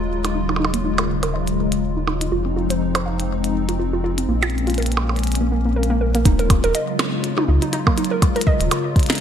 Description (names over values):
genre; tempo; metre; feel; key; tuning
IDM; 122 BPM; 4/4; swing 56% on 16ths; Eb dorian; A4 = 440 Hz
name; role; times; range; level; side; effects
hollow soft pad; sustained chords; 0.0-9.2 s; Db3 to F4; -23 LUFS; left 2 dB; ensemble chorus
round analog bass; bass; 0.0-8.7 s; Eb1 to Db2; -22 LUFS; equal; tube saturation
warbly dusty pluck; arpeggios; 0.2-9.2 s; Bb3 to F5; -24 LUFS; right 2 dB; chorus, ping-pong delay
glitchy drum kit; drums; 0.2-9.2 s; hi-hat, percussion blips, snare drum, toms; -24 LUFS; right 2 dB; studio reverb, gated reverb, ping-pong delay
electronic kick drum; drums; 6.3-9.1 s; none; -16 LUFS; equal; studio reverb
room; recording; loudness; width
moderate lush hall reverb, RT60 1.7 s, digital ambience; bright 1980s-style digital production, lossy compression artefacts; -17 LUFS; side -8 dB against mid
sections
0.0-6.3 A section; 6.3-9.2 B section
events
filter sweep on synth arpeggio sound 0.0-6.3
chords
0.0 Ebm11; 2.3 Fm7; 4.3 Bbm9; 6.3 Ebm11